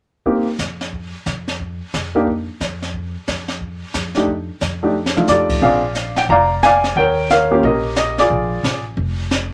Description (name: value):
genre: jazz piano trio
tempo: 179 BPM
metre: 4/4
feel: swing 63% on 8ths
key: unclear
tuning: A4 = 439 Hz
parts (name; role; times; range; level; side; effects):
- warm baby grand piano; melody; 0.3-8.8 s; A3 to Bb5; -17 LUFS; equal; none
- jazz brush drum kit; drums; 0.3-9.5 s; brushed snare drum, crash cymbal, hi-hat, kick drum, snare drum, toms; -26 LUFS; equal; none
- upright bass; bass; 0.6-9.5 s; F1 to F2; -27 LUFS; equal; none
room: moderate small room reverb, RT60 0.5 s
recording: lossy compression artefacts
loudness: -18 LUFS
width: mono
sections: 0.3-5.6 A section; 5.6-9.5 B section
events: drum fill 5.0-5.3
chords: 0.3 N.C.; 5.6 Bb7; 7.0 Eb7; 8.3 Bb7